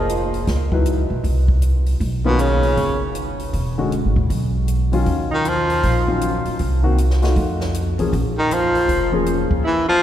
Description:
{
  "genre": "jazz, small-group swing and bop",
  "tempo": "157 BPM",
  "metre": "4/4",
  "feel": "swing 64% on 8ths",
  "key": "Bb minor",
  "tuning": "A4 = 439 Hz",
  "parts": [
    { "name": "warm baby grand piano", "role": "accompaniment", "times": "0.0-9.6 s", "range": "D3 to Eb5", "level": "-24 LUFS", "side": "left 3 dB", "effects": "none" },
    { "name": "upright bass", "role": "bass", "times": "0.0-9.5 s", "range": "E1 to F2", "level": "-20 LUFS", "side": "equal", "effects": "none" },
    { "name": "compact cocktail drum kit", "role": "drums", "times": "0.1-9.6 s", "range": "hi-hat, kick drum, snare drum", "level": "-27 LUFS", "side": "equal", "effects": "none" },
    { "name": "breathy baritone saxophone", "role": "melody", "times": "2.3-3.0, 5.3-10.0 s", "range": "B2 to F3", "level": "-22 LUFS", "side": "equal", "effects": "none" },
    { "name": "clear tenor saxophone", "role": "second line", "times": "2.3-6.1, 8.4-10.0 s", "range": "B3 to F4", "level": "-27 LUFS", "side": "right 2 dB", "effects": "none" }
  ],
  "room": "wet cathedral reverb, RT60 4.2 s",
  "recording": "recorded in a church or concert hall",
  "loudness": "-16 LUFS",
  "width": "side -11 dB against mid",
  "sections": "0.0-10.0 A section",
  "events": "none",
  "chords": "0.5 Dbm11; 1.2 N.C.; 2.0 Bmaj9#11; 3.5 E69; 5.1 Ebm9; 6.6 Cm7b5; 7.4 F7b9; 8.1 Bbm7"
}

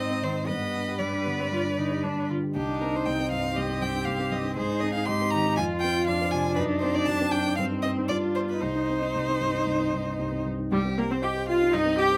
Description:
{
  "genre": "quick classical-period movement for piano quartet",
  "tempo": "117 BPM",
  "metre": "4/4",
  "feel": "rubato",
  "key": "C minor",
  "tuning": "A4 = 440 Hz",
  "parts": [
    { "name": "clear violin", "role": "melody", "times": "0.0-12.2 s", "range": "G4 to C6", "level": "-33 LUFS", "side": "equal", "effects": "none" },
    { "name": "rich cello", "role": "second line", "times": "0.0-12.2 s", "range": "G3 to B4", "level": "-34 LUFS", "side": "equal", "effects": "none" },
    { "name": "dark grand piano", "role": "accompaniment", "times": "0.0-12.2 s", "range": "C2 to Eb5", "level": "-31 LUFS", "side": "equal", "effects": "none" },
    { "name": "rich viola", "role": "accompaniment", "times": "0.0-12.2 s", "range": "G3 to G4", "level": "-32 LUFS", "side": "equal", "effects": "none" }
  ],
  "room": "light reverb",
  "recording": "none",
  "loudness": "-27 LUFS",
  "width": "mono",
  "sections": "0.0-10.7 A section; 10.7-12.2 B section",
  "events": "none",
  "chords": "0.5 G; 2.6 Cm; 4.6 Ab; 5.6 F5; 6.6 D7b9/F#; 7.6 Cm/G; 8.1 G7; 8.6 Cm"
}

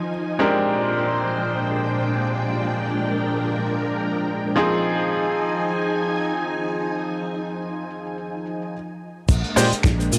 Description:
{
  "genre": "nu-disco, nu disco",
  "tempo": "108 BPM",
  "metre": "4/4",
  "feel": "swing 56% on 16ths",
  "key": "Bb mixolydian",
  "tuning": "A4 = 440 Hz",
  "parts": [
    { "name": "bright concert grand piano", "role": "accompaniment", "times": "0.0-9.6 s", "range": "F3 to C5", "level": "-26 LUFS", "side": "equal", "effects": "sidechain pumping, cassette tape, tape echo" },
    { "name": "string machine, full ensemble", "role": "sustained chords", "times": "0.0-10.2 s", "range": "Bb2 to Ab5", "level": "-27 LUFS", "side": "equal", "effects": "ensemble chorus, sidechain pumping, cassette tape" },
    { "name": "damped 70s drum kit", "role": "drums", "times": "0.1-10.2 s", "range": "cabasa, crash cymbal, finger snaps, hi-hat, snare drum", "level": "-27 LUFS", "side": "equal", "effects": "low-pass filter on cymbals, small room ambience, cassette tape, low-pass filter on hats, low-pass filter on snare, low-pass filter on perc, low-pass filter on room" },
    { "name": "fingered electric bass", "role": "bass", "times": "9.3-10.2 s", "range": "Bb1 to Bb2", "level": "-24 LUFS", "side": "equal", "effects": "none" },
    { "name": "kick drum", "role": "drums", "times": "9.3-10.0 s", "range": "none", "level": "-20 LUFS", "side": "equal", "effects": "small room ambience, cassette tape" },
    { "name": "tube shaker", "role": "percussion", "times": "9.3-10.2 s", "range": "none", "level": "-33 LUFS", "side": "equal", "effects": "none" }
  ],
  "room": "moderate studio reverb, RT60 0.6 s",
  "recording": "home recording on cassette",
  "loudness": "-23 LUFS",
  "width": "mono",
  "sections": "0.0-9.3 A section",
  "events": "stop 8.7-9.3",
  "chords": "0.4 Bb13; 4.6 Fm7; 9.3 Bb7"
}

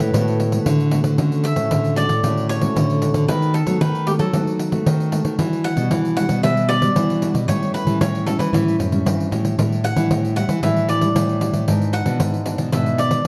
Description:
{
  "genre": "samba and choro",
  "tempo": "114 BPM",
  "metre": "4/4",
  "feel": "straight",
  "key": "D major",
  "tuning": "A4 = 440 Hz",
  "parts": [
    { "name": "cavaquinho", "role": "melody", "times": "0.0-13.3 s", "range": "G4 to F#5", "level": "-27 LUFS", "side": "equal", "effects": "none" },
    { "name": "mellow clarinet", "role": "second line", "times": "0.0-0.9 s", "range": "B4", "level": "-29 LUFS", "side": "equal", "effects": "none" },
    { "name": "nylon-string guitar", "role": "accompaniment", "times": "0.0-13.3 s", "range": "G#2 to F#4", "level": "-25 LUFS", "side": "equal", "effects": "none" },
    { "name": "nylon-string guitar", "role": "bass", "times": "0.0-13.2 s", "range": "F#2 to F#3", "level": "-23 LUFS", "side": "equal", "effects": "none" },
    { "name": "pandeiro", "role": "percussion", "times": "0.0-13.3 s", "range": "none", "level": "-25 LUFS", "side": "equal", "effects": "none" }
  ],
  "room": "wet large studio reverb, RT60 1.3 s",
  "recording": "dark, warm production",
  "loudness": "-19 LUFS",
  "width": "mono",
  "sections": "0.0-1.2 A section; 1.2-13.3 A section",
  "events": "none",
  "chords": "0.0 D6; 1.2 Dmaj7; 3.3 B7/D#; 5.4 Em9; 7.5 A7; 9.6 A7sus4; 11.7 E7/G#"
}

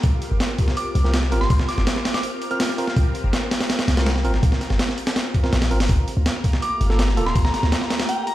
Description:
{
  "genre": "drum and bass, jungle",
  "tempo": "164 BPM",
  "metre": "4/4",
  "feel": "straight",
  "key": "unclear",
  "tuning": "A4 = 442 Hz",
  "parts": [
    { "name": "soft string machine", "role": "sustained chords", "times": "0.0-8.3 s", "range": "A3 to Bb4", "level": "-30 LUFS", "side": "equal", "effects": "phaser, ensemble chorus" },
    { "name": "warm 808-style bass", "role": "bass", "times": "0.0-7.7 s", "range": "D1 to D2", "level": "-20 LUFS", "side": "equal", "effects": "none" },
    { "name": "breakbeat sampler-style drum kit", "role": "drums", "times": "0.0-8.3 s", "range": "hi-hat, kick drum, snare drum", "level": "-22 LUFS", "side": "equal", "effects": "studio reverb" },
    { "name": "soft synth bell", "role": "melody", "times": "0.8-2.8, 6.6-8.3 s", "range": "G5 to F6", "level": "-28 LUFS", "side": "equal", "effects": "chorus, dub echo" },
    { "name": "barky tine electric piano", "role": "stabs", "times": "1.0-7.2 s", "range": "Bb3 to Bb4", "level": "-30 LUFS", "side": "right 2 dB", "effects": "dub echo" },
    { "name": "drifting glass-harmonics texture", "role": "texture", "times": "6.1-8.3 s", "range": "Bb5", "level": "-36 LUFS", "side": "right 1 dB", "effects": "chorus, built-in reverb" }
  ],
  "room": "light reverb, digital ambience",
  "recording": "played on a big sound system in a bare room, stone room reverb",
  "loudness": "-18 LUFS",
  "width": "side -14 dB against mid",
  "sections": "0.0-8.3 A section",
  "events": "none",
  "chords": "0.0 C7sus4; 5.9 Gm9"
}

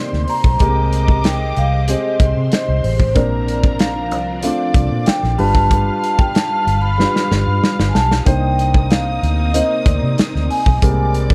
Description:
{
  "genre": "lush 1970s-style soul",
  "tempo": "94 BPM",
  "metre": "4/4",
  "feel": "straight",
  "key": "unclear",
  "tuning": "A4 = 444 Hz",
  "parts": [
    { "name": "vibraphone with soft mallets", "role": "melody", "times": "0.0-11.1 s", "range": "C5 to C6", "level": "-23 LUFS", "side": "equal", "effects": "none" },
    { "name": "dark studio violin section", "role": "second line", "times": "0.0-11.3 s", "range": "Eb4 to F6", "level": "-31 LUFS", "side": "equal", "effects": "none" },
    { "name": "dark grand piano", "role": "accompaniment", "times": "0.0-11.3 s", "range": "G3 to C5", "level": "-26 LUFS", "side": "equal", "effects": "none" },
    { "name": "string machine, full ensemble", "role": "sustained chords", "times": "0.1-11.3 s", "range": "C3 to B4", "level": "-31 LUFS", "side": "equal", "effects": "ensemble chorus" },
    { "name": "vintage muted fingered electric bass", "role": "bass", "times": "0.1-11.3 s", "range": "G1 to C3", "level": "-20 LUFS", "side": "equal", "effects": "none" },
    { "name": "modern studio drum kit", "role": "drums", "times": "0.1-11.3 s", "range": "hi-hat, kick drum, snare drum", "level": "-19 LUFS", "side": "equal", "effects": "none" }
  ],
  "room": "small room reverb",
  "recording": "none",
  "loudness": "-16 LUFS",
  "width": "mono",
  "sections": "0.0-11.3 A section",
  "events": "drum fill 7.0-8.3",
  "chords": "0.0 Cm9; 0.6 Abmaj9/C; 3.2 Bbmaj9; 5.4 G7; 8.3 Cm9; 10.8 Abmaj9/C"
}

